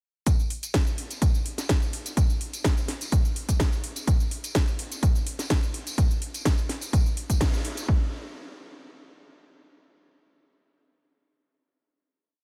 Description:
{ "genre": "house", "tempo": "126 BPM", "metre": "4/4", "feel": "straight", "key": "none", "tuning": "none", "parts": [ { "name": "electronic kick drum", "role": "drums", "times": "0.3-8.0 s", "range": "none", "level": "-25 LUFS", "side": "equal", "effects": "none" }, { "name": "house drum kit", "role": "drums", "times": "0.3-7.9 s", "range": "hi-hat, shaker, snare drum", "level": "-34 LUFS", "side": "equal", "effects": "none" }, { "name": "tambourine", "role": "percussion", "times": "0.3-7.9 s", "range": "none", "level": "-42 LUFS", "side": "equal", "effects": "none" } ], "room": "light reverb", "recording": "none", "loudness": "-26 LUFS", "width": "mono", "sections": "0.3-7.9 drop; 7.9-9.8 final hit", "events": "drop 0.3-7.9; band accent 7.4", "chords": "none", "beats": "| 0.27 0.74 1.22 1.69 | 2.17 2.65 3.12 3.60 | 4.08 4.55 5.03 5.50 | 5.98 6.46 6.93 7.41 | 7.88" }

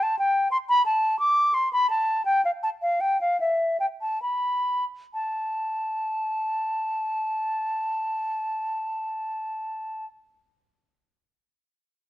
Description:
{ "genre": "classical, baroque-style fantasia for unaccompanied flute", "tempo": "63-93 BPM", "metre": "3/4", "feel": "rubato", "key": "A minor", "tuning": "A4 = 439 Hz", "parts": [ { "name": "concert flute", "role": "solo", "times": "0.0-10.1 s", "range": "E5 to D6", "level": "-23 LUFS", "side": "equal", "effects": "none" } ], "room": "light reverb", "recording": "worn, warbling old tape, cassette tape, warbly pitch drift", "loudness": "-23 LUFS", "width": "side -14 dB against mid", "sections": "0.0-5.1 A section; 5.1-10.6 B section", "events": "slowing down 0.0-5.1", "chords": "none", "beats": "| 0.52 1.19 1.89 | 2.62 3.39 4.22 | 5.14 6.06 6.96 | 7.87 8.76 9.65" }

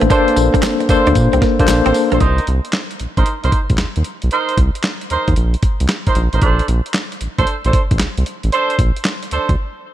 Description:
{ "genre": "R&B, new jack swing", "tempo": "114 BPM", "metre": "4/4", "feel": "swing 67% on 16ths", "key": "C dorian", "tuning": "A4 = 440 Hz", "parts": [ { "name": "barky tine electric piano", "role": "accompaniment", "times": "0.0-2.2 s", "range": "Bb3 to C5", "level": "-15 LUFS", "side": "left 4 dB", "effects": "fast stereo tremolo" }, { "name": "direct-recorded clean electric guitar", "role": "riff", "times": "0.0-2.2 s", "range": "A3 to D4", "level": "-22 LUFS", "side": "right 5 dB", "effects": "wide subtle chorus" }, { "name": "round analog bass", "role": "bass", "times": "0.0-9.6 s", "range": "A1 to Bb2", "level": "-16 LUFS", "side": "equal", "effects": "none" }, { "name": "dusty soul sampler-style drum kit", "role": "drums", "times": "0.0-9.6 s", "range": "handclaps, hi-hat, kick drum, snare drum, tambourine", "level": "-18 LUFS", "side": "equal", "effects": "none" }, { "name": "mellow horn section", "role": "stabs", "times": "0.1-9.5 s", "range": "D4 to C5", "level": "-21 LUFS", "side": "right 4 dB", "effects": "ping-pong delay" }, { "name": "group handclap", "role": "percussion", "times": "0.6-1.8 s", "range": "none", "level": "-32 LUFS", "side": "right 3 dB", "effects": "none" } ], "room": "little or no reverb", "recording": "none", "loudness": "-14 LUFS", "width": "side -12 dB against mid", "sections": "0.0-2.2 A section; 2.2-9.9 B section", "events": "break 9.6-9.9", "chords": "0.0 Bbmaj9; 2.2 Cm7; 6.4 Bbmaj9", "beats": "| 0.10 0.63 1.16 1.68 | 2.21 2.74 3.26 3.79 | 4.32 4.84 5.37 5.89 | 6.42 6.95 7.47 8.00 | 8.53 9.05" }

